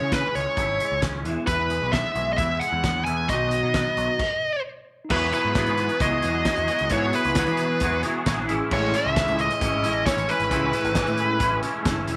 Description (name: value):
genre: indie rock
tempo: 133 BPM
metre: 4/4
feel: straight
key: E major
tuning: A4 = 440 Hz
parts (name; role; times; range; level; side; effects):
- bluesy overdriven lead guitar; melody; 0.0-11.6 s; B4 to G#5; -26 LUFS; equal; distortion, slapback echo
- raw garage guitar; riff; 0.0-12.2 s; A2 to E4; -34 LUFS; equal; overdrive, ensemble chorus, slapback echo
- twangy electric guitar; riff; 0.0-12.2 s; A2 to G#4; -31 LUFS; equal; ensemble chorus
- growling picked electric bass; bass; 0.0-12.2 s; E1 to E3; -32 LUFS; equal; overdrive
- loose indie drum kit; drums; 0.1-12.2 s; crash cymbal, hi-hat, kick drum, snare drum; -31 LUFS; equal; none
- tine electric piano; second line; 5.0-12.0 s; D#4 to G#4; -41 LUFS; equal; none
- tambourine; percussion; 5.3-12.2 s; none; -49 LUFS; equal; none
room: light reverb, small room ambience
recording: none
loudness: -23 LUFS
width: mono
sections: 0.0-5.1 A section; 5.1-12.2 B section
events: stop 4.2-5.1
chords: 0.0 C#m; 1.3 E; 3.3 B; 5.1 Eadd9; 8.5 Amaj7